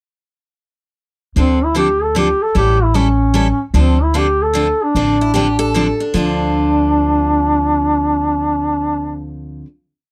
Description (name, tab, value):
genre	acoustic string swing (jazz manouche)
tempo	150 BPM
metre	3/4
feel	swing 64% on 8ths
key	D minor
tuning	A4 = 440 Hz
part	mellow duduk	melody	1.4-9.3 s	C4 to A4	-18 LUFS	equal	none
part	picked steel-string acoustic guitar	accompaniment	1.4-9.7 s	D3 to A4	-22 LUFS	equal	none
part	upright bass	bass	1.4-9.6 s	A1 to D2	-21 LUFS	equal	none
part	picked steel-string acoustic guitar	second line	5.2-9.6 s	D4 to A4	-26 LUFS	equal	none
room	little or no reverb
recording	dry, close 1970s-style studio recording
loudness	-15 LUFS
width	mono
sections	1.4-6.1 A section; 6.1-8.5 final chord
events	none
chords	1.4 Dm7; 2.6 A7; 3.8 Dm7